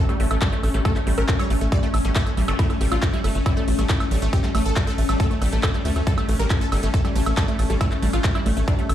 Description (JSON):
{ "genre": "psychedelic trance", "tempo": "138 BPM", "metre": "4/4", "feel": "straight", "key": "unclear", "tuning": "A4 = 438 Hz", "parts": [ { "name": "supersaw stab", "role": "melody", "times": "0.0-8.9 s", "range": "A3 to E5", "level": "-29 LUFS", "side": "equal", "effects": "phaser, sidechain pumping, dub echo" }, { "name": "swarming drone", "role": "sustained chords", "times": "0.0-8.9 s", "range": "C#4", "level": "-29 LUFS", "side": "left 4 dB", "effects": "built-in reverb, sidechain pumping" }, { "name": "wide unison pluck", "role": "riff", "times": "0.1-8.8 s", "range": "G3 to A3", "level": "-30 LUFS", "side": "right 2 dB", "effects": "auto-pan, sidechain pumping, dub echo" }, { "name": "big-room dance drum kit", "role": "drums", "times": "0.1-8.9 s", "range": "handclaps, hi-hat, ride cymbal, woodblock", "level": "-30 LUFS", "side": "right 1 dB", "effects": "none" }, { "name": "tight sequencer bass", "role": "bass", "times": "0.2-8.9 s", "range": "G1 to D2", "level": "-21 LUFS", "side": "equal", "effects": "none" }, { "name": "electronic kick drum", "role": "drums", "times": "0.4-8.8 s", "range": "none", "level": "-22 LUFS", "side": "equal", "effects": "none" }, { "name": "zap", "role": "sound effects", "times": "2.5-2.6 s", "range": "none", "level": "-36 LUFS", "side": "equal", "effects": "none" } ], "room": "digital ambience", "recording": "played on a big sound system in a bare room, large studio reverb", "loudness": "-19 LUFS", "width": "side -11 dB against mid", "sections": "0.0-8.9 A section", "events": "none", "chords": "0.0 A5" }